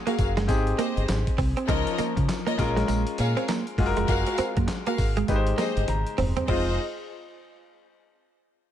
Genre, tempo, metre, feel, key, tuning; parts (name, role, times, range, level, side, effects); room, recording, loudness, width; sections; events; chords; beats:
R&B, new jack swing; 100 BPM; 4/4; swing 61% on 16ths; F minor; A4 = 440 Hz
clear baby grand piano; accompaniment; 0.0-6.8 s; F3 to Bb5; -29 LUFS; left 3 dB
direct-recorded clean electric guitar; riff; 0.1-6.7 s; Ab3 to C4; -30 LUFS; right 6 dB; lush chorus
warm symphonic string section; stabs; 0.1-6.7 s; F4 to F5; -31 LUFS; left 3 dB; ping-pong delay
dusty soul sampler-style drum kit; drums; 0.1-6.7 s; crash cymbal, handclaps, hi-hat, kick drum, snare drum, tambourine, toms; -29 LUFS; equal; vintage 12-bit sampler grit
deep dub fingered electric bass; bass; 0.2-6.8 s; E1 to Db3; -26 LUFS; equal
little or no reverb; -22 LUFS; side -10 dB against mid
0.0-6.5 A section; 6.5-8.7 B section
grand piano fill 5.6-6.5; drum fill 5.9-6.5
0.5 Abmaj7; 1.7 Db69; 2.6 Bbm7; 3.8 Gbmaj9; 5.3 Abmaj7; 6.5 Fm7
0.48 1.08 | 1.69 2.29 2.88 3.48 | 4.08 4.68 5.29 5.88 | 6.49